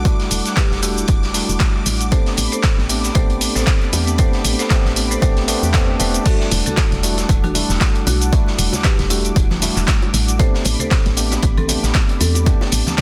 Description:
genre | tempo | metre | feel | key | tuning
deep house | 116 BPM | 4/4 | swing 56% on 16ths | E minor | A4 = 441 Hz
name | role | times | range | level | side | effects
marimba with hard mallets | melody | 0.0-13.0 s | C4 to C5 | -30 LUFS | equal | tape echo
warm analog pad | sustained chords | 0.0-13.0 s | A4 to D6 | -35 LUFS | equal | chorus, sidechain pumping
tine electric piano | stabs | 0.0-13.0 s | G3 to G4 | -26 LUFS | equal | sidechain pumping, low-pass filter, tape echo
woody FM bass | bass | 0.0-12.8 s | E1 to E2 | -23 LUFS | equal | sidechain pumping
string machine, violins | texture | 0.0-6.3 s | D6 | -36 LUFS | equal | none
crunchy breakbeat drum kit | drums | 0.1-13.0 s | hi-hat, snare drum | -32 LUFS | equal | sidechain pumping on hats, high-pass filter on hats, high-pass filter on snare, high-pass filter on room
electronic kick drum | drums | 0.1-13.0 s | none | -18 LUFS | equal | none
punchy analog drum machine | drums | 0.1-13.0 s | cabasa, crash cymbal, handclaps, hi-hat | -24 LUFS | equal | none
bongos and congas | percussion | 6.5-13.0 s | none | -30 LUFS | equal | none
room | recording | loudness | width
light reverb, small room reverb | dense, heavily limited modern master | -17 LUFS | mono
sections
0.0-6.3 A section; 6.3-13.0 B section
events
build-up 0.0-6.3; filter sweep on tine electric piano 0.0-6.3; drop 6.3-13.0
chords
0.0 Em11; 2.1 Am11; 6.3 Em11; 10.4 Am11

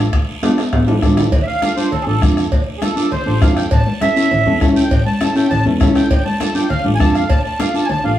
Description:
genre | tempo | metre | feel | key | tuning
latin, cumbia | 201 BPM | 4/4 | straight | D harmonic minor | A4 = 440 Hz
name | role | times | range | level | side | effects
mellow electric guitar | accompaniment | 0.0-8.1 s | C#4 to A4 | -18 LUFS | equal | none
fingered electric bass | bass | 0.0-8.2 s | A1 to F2 | -20 LUFS | left 1 dB | none
bombo | percussion | 0.1-7.7 s | none | -18 LUFS | left 1 dB | none
guiro | percussion | 0.1-8.2 s | none | -30 LUFS | right 4 dB | none
timbales and cowbell | percussion | 0.1-8.0 s | none | -23 LUFS | right 1 dB | none
congas | percussion | 0.4-8.0 s | none | -23 LUFS | left 2 dB | none
accordion | melody | 1.4-8.2 s | G#4 to A5 | -20 LUFS | right 2 dB | light tremolo tuning
room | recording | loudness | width
wet stone room reverb, RT60 1.0 s | band playing live in one room, small room ambience | -13 LUFS | side -12 dB against mid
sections
0.0-1.3 A section; 1.3-8.2 B section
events
drum fill 0.4-1.3; accordion solo 1.3-8.2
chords
0.0 Dm; 3.7 A7; 6.1 Dm

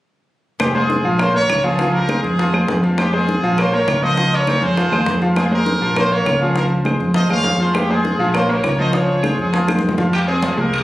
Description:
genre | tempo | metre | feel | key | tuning
latin, salsa | 202 BPM | 4/4 | straight | F minor | A4 = 444 Hz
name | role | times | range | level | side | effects
brilliant trumpet section | melody | 0.6-10.8 s | C4 to F5 | -20 LUFS | right 1 dB | none
bright grand piano | accompaniment | 0.6-10.8 s | F3 to F5 | -18 LUFS | equal | none
fingered electric bass | bass | 0.6-10.8 s | F1 to F2 | -21 LUFS | equal | none
bongos | percussion | 0.6-10.0 s | none | -26 LUFS | left 2 dB | none
claves | percussion | 0.6-10.8 s | none | -28 LUFS | right 1 dB | none
congas | percussion | 10.1-10.8 s | none | -28 LUFS | equal | none
timbales | percussion | 10.1-10.8 s | none | -26 LUFS | right 1 dB | none
room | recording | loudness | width
moderate large studio reverb, RT60 1.1 s | recorded on a phone in the room, club reverb | -14 LUFS | side -16 dB against mid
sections
0.6-10.1 A section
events
drum fill 9.7-10.1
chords
0.6 Fm; 1.2 Bbm; 1.8 Dbmaj7; 2.4 Fm; 3.6 Bbm; 4.2 Dbmaj7; 4.8 Fm; 6.0 Bbm; 6.6 Dbmaj7; 7.2 Fm; 8.3 Bbm; 8.9 Dbmaj7; 9.5 Fm

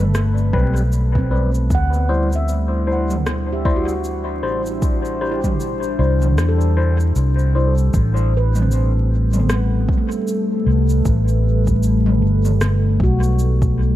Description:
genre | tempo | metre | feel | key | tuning
ambient dub | 77 BPM | 4/4 | swing 59% on 16ths | A dorian | A4 = 440 Hz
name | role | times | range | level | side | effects
deep dark ambient pad | sustained chords | 0.0-14.0 s | G3 to B5 | -24 LUFS | left 1 dB | chorus, built-in reverb
overdriven tine electric piano | stabs | 0.0-7.7 s | G3 to C5 | -25 LUFS | left 2 dB | phaser, dub echo
fingered electric bass | bass | 0.0-14.0 s | G1 to E2 | -17 LUFS | equal | none
organic electronic drum kit | drums | 0.1-13.7 s | cabasa, rim click, toms | -26 LUFS | equal | overdrive, dub echo
electronic kick drum | drums | 0.5-13.7 s | none | -20 LUFS | equal | overdrive
handpan | arpeggios | 1.2-14.0 s | A3 to F#5 | -28 LUFS | right 2 dB | dub echo
room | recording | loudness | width
light reverb, digital ambience | vinyl crackle | -15 LUFS | side -14 dB against mid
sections
0.0-7.9 A section; 7.9-14.0 B section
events
kick drops out 6.4-7.9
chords
0.0 Am9; 1.7 D9sus4; 7.9 Am9

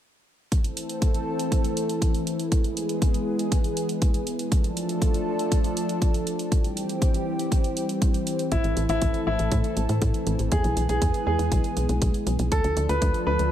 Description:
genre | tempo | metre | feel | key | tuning
italo disco | 120 BPM | 4/4 | straight | A minor | A4 = 440 Hz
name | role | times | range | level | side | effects
lush unison pad | sustained chords | 0.5-13.5 s | E3 to A4 | -27 LUFS | equal | chorus, vintage 12-bit sampler grit
electronic hi-hat | drums | 0.5-13.5 s | none | -36 LUFS | right 4 dB | none
electronic kick drum | drums | 0.5-13.1 s | none | -23 LUFS | equal | none
clear concert grand piano | melody | 8.5-13.5 s | E4 to B4 | -28 LUFS | equal | vintage 12-bit sampler grit, tape echo
tight sequencer bass | bass | 8.5-13.5 s | A1 to A2 | -25 LUFS | equal | none
room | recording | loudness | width
light reverb, digital ambience | none | -22 LUFS | side -11 dB against mid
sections
0.5-13.5 A section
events
none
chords
0.5 Am; 2.5 E; 4.5 Dm; 6.5 C; 8.5 Am; 10.5 E; 12.5 Dm

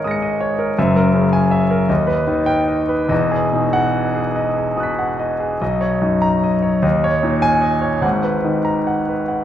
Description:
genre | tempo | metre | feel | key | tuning
classical, impressionist solo piano | 46-56 BPM (dotted quarters) | 6/8 | rubato | unclear | A4 = 440 Hz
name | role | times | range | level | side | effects
clear concert grand piano | solo | 0.0-9.4 s | E1 to C#7 | -15 LUFS | equal | none
room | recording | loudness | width
wet recital hall reverb, RT60 1.3 s | recorded in a church or concert hall | -15 LUFS | side -11 dB against mid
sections
0.0-9.4 A section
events
none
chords
0.0 A#m7/G#; 0.8 F#9; 1.9 D#aug; 3.1 Emaj9; 5.6 Bmaj9; 6.8 D#7sus4; 8.0 G#m9

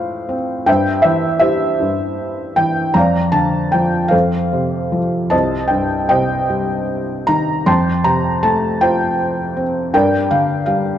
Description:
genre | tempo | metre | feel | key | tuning
classical, lyrical solo piano | 52 BPM (dotted quarters) | 6/8 | uneven beats, rubato | unclear | A4 = 437 Hz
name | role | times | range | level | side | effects
felt-muted upright piano | solo | 0.0-11.0 s | C2 to C6 | -14 LUFS | equal | none
room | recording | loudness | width
moderate scoring stage reverb, RT60 1.8 s | dark, warm production | -14 LUFS | side -10 dB against mid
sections
0.0-11.0 A section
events
none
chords
0.0 Fadd9/A; 0.7 C/G; 3.0 F69; 4.1 F; 5.3 Cm; 7.7 Fadd9; 9.9 Gm

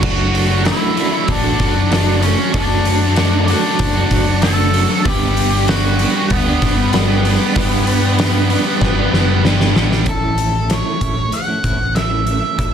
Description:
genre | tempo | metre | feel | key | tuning
quiet-loud alternative rock | 96 BPM | 4/4 | straight | A mixolydian | A4 = 440 Hz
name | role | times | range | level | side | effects
octave-fuzz lead guitar | melody | 0.0-12.7 s | B3 to A5 | -20 LUFS | equal | distortion
twelve-string electric guitar | arpeggios | 0.0-12.7 s | A2 to F#4 | -22 LUFS | right 7 dB | tremolo
overdriven electric guitar | riff | 0.0-10.1 s | F#3 to G4 | -22 LUFS | right 12 dB | none
overdriven semi-hollow guitar | riff | 0.0-10.0 s | F#3 to G4 | -23 LUFS | left 16 dB | none
overdriven picked electric bass | bass | 0.0-12.7 s | F#1 to G2 | -18 LUFS | equal | none
oversized low-tuned drum kit | drums | 0.0-12.7 s | crash cymbal, hi-hat, kick drum, snare drum | -19 LUFS | equal | none
room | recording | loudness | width
light reverb | dense, heavily limited modern master, faint mains hum | -13 LUFS | side -8 dB against mid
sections
0.0-10.1 A section; 10.1-12.7 B section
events
drum fill 8.8-10.1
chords
0.0 D/F#; 5.1 Gmaj7; 10.1 A

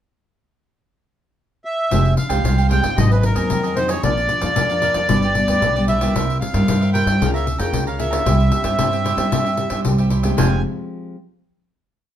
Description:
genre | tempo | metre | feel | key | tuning
samba and choro | 113 BPM | 4/4 | straight | F harmonic minor | A4 = 441 Hz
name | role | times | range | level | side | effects
accordion | melody | 1.6-10.6 s | Bb4 to Ab5 | -21 LUFS | equal | none
cavaquinho | accompaniment | 1.9-10.6 s | D4 to Bb5 | -28 LUFS | right 8 dB | none
nylon-string guitar | accompaniment | 1.9-11.2 s | G2 to Ab4 | -24 LUFS | left 2 dB | none
upright bass | bass | 1.9-10.6 s | F1 to G2 | -20 LUFS | right 1 dB | none
pandeiro | percussion | 1.9-10.5 s | none | -23 LUFS | left 3 dB | none
room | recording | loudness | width
moderate studio reverb, RT60 0.8 s | minimal, uncompressed stereo recording | -16 LUFS | side -10 dB against mid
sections
0.0-1.9 pickup bar; 1.9-10.4 A section; 10.4-12.2 final chord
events
none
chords
0.0 N.C.; 1.9 Fmadd9; 3.0 Ab7; 4.0 Bb; 5.1 G; 6.2 C7; 7.2 Bbm7/Db; 8.3 C; 10.4 Fmadd9

